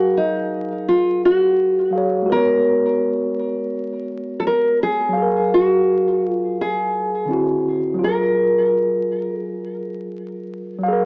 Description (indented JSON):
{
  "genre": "hip hop",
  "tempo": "84 BPM",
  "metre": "4/4",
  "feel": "swing 57% on 16ths",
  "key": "F# major",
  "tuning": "A4 = 445 Hz",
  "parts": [
    { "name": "nylon-string guitar", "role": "melody", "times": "0.0-10.1 s", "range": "D#4 to A#4", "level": "-17 LUFS", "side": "equal", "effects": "low-pass filter, plate reverb, tape echo" },
    { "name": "mellow tine electric piano", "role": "accompaniment", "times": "0.0-11.1 s", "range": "D3 to E#5", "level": "-21 LUFS", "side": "equal", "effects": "medium stereo tremolo, cassette tape, low-pass filter, plate reverb" }
  ],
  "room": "wet studio reverb, RT60 0.6 s",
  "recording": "worn, warbling old tape, cassette tape, vinyl crackle, warbly pitch drift, small speaker sound",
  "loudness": "-16 LUFS",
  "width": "side -33 dB against mid",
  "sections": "0.0-10.9 A section",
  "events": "none",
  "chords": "0.0 F#maj9; 2.3 G#m11; 5.1 F#maj9; 7.3 D9; 8.0 F#maj9"
}